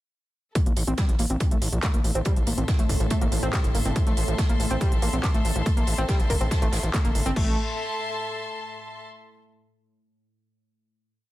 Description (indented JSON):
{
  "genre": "driving peak-time techno",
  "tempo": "141 BPM",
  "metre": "4/4",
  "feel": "straight",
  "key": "A minor",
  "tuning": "A4 = 440 Hz",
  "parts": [
    { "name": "overdriven synth lead", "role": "riff", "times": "0.6-7.6 s", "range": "G3 to C4", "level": "-31 LUFS", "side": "equal", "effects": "distortion, analog chorus, sidechain pumping, digital delay" },
    { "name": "deep dark ambient pad", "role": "drone", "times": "1.7-7.4 s", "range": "A2", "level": "-36 LUFS", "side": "left 1 dB", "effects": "chorus, built-in reverb, sidechain pumping" },
    { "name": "electronic kick drum", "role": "drums", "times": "0.6-7.4 s", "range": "none", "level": "-24 LUFS", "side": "equal", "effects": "none" },
    { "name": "open jazz drum kit", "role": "drums", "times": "0.6-7.4 s", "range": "hi-hat, snare drum", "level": "-38 LUFS", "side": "right 3 dB", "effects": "sidechain pumping on hats, high-pass filter on hats, high-pass filter on snare, high-pass filter on room" },
    { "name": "techno drum kit", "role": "drums", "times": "0.6-7.5 s", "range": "crash cymbal, handclaps, hi-hat", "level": "-33 LUFS", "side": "equal", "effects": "overdrive" },
    { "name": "rich studio string section", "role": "texture", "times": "0.6-9.0 s", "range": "A4 to C6", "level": "-34 LUFS", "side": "left 2 dB", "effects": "sidechain pumping" },
    { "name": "gritty driven synth bass", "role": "bass", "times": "0.7-7.6 s", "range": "G1 to Bb1", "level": "-27 LUFS", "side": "equal", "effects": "sidechain pumping" }
  ],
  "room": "studio reverb",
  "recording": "dense, heavily limited modern master",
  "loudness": "-22 LUFS",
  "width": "side -16 dB against mid",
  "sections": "0.6-7.4 groove; 7.4-9.1 final chord",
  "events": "fade-in on string section 0.6-7.4; filter sweep on analog synth lead 0.6-7.4",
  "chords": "0.6 Am",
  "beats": "| 0.55 0.98 1.41 1.83 | 2.26 2.68 3.11 3.53 | 3.96 4.38 4.81 5.24 | 5.66 6.09 6.51 6.94 | 7.36 7.79 8.21 8.64"
}